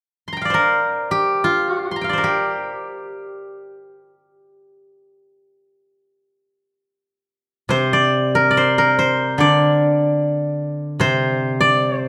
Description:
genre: chinese traditional, Chinese solo plucked strings.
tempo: free time.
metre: none.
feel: none.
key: unclear.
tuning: A4 = 440 Hz.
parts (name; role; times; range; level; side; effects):
steel-string zither; solo; 0.3-12.1 s; C3 to C6; -18 LUFS; equal; none.
room: moderate scoring stage reverb, RT60 1.7 s.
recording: none.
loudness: -18 LUFS.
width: mono.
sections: 0.0-7.7 A section; 7.7-12.1 B section.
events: none.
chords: none.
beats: free time.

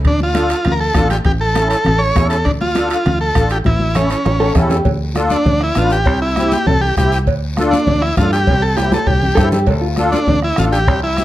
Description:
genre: latin, cumbia.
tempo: 200 BPM.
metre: 4/4.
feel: straight.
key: D harmonic minor, D minor from 4.9 s.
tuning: A4 = 441 Hz.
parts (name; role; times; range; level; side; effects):
fingered electric bass; bass; 0.0-11.2 s; A1 to G2; -18 LUFS; equal; none.
bombo; percussion; 0.0-11.2 s; none; -18 LUFS; left 1 dB; none.
timbales and cowbell; percussion; 0.0-11.0 s; none; -26 LUFS; right 7 dB; none.
combo organ; melody; 0.1-11.2 s; C#4 to C#5; -17 LUFS; equal; none.
congas; percussion; 0.1-11.2 s; none; -22 LUFS; left 2 dB; none.
guiro; percussion; 0.1-11.2 s; none; -33 LUFS; left 6 dB; none.
musette accordion; accompaniment; 0.3-11.2 s; C4 to B4; -21 LUFS; left 1 dB; none.
mellow electric guitar; second line; 4.4-4.9, 9.4-10.0 s; F4 to A4; -20 LUFS; left 1 dB; none.
room: moderate large studio reverb, RT60 0.9 s.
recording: dark, warm production.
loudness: -12 LUFS.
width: side -14 dB against mid.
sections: 0.0-4.9 A section; 4.9-11.2 B section.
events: drum fill 3.7-4.9, 8.8-9.7.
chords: 0.0 Dm; 1.3 A; 2.5 Dm; 3.7 A7; 4.9 Dm; 6.1 C; 7.3 Dm; 8.5 C; 9.7 Dm.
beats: | 0.05 0.35 0.65 0.95 | 1.25 1.55 1.85 2.15 | 2.46 2.76 3.06 3.36 | 3.66 3.96 4.26 4.56 | 4.86 5.16 5.46 5.76 | 6.07 6.37 6.67 6.97 | 7.27 7.57 7.87 8.17 | 8.47 8.77 9.07 9.37 | 9.67 9.97 10.27 10.57 | 10.87 11.17.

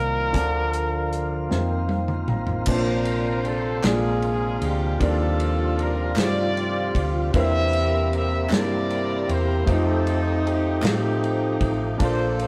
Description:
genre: slow gospel.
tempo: 52 BPM (dotted quarters).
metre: 6/8.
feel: straight.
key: Bb major.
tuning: A4 = 440 Hz.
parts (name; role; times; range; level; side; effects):
clear trumpet; melody; 0.0-1.9 s; Bb4; -28 LUFS; equal; none.
warm concert grand piano; accompaniment; 0.0-12.5 s; Bb2 to Bb5; -31 LUFS; equal; none.
tonewheel organ; sustained chords; 0.0-12.5 s; C3 to C5; -31 LUFS; equal; slow rotary speaker, overdrive.
hollow-body short-scale fingered electric bass; bass; 0.0-12.5 s; A1 to A2; -28 LUFS; equal; none.
warm soul drum kit; drums; 0.3-12.5 s; crash cymbal, hi-hat, kick drum, ride cymbal, snare drum, toms; -30 LUFS; equal; none.
warm horn section; melody; 2.7-12.5 s; C4 to E5; -28 LUFS; equal; none.
group handclap; percussion; 3.8-11.2 s; none; -38 LUFS; equal; none.
room: moderate stone room reverb, RT60 1.2 s.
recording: band playing live in one room.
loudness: -23 LUFS.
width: mono.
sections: 0.0-2.7 A section; 2.7-12.5 B section.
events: drum fill 1.5-2.7; grand piano fill 1.5-2.7.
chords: 0.3 Dm; 1.5 F7sus4; 2.7 Bbmaj9; 3.8 Bb7; 5.0 Ebmaj9#11; 7.3 C9/E; 9.7 F9.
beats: | 0.35 1.51 | 2.68 3.85 | 5.01 6.17 | 7.34 8.50 | 9.67 10.83 | 12.00.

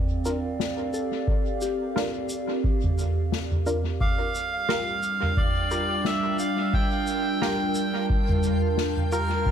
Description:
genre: ambient dub.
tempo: 88 BPM.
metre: 4/4.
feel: swing 56% on 16ths.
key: G minor.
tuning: A4 = 440 Hz.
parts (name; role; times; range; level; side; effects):
warbly tape-like pad; sustained chords; 0.0-9.5 s; G3 to A5; -29 LUFS; right 1 dB; chorus, built-in reverb, phaser.
filtered dub chord stab; stabs; 0.3-9.4 s; D4 to Bb4; -34 LUFS; right 1 dB; chorus, dub echo.
soft-mallet drum kit; drums; 0.3-9.3 s; shaker, snare drum, toms; -28 LUFS; equal; dub echo.
soft synth bell; arpeggios; 0.9-9.5 s; G4 to D6; -37 LUFS; left 6 dB; chorus, dub echo.
electronic kick drum; drums; 1.3-9.5 s; none; -26 LUFS; equal; none.
melodica; melody; 4.0-9.5 s; Bb4 to G5; -28 LUFS; right 1 dB; dub echo.
backwards swelling texture; texture; 5.1-9.5 s; F4 to G5; -38 LUFS; left 2 dB; built-in reverb.
room: light reverb.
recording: echo-heavy mix.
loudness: -23 LUFS.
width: side -8 dB against mid.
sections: 0.0-9.5 A section.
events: none.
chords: 0.0 C9sus4; 4.0 Gm7.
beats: 0.60 | 1.28 1.96 2.64 3.33 | 4.01 4.69 5.37 6.05 | 6.74 7.42 8.10 8.78 | 9.46.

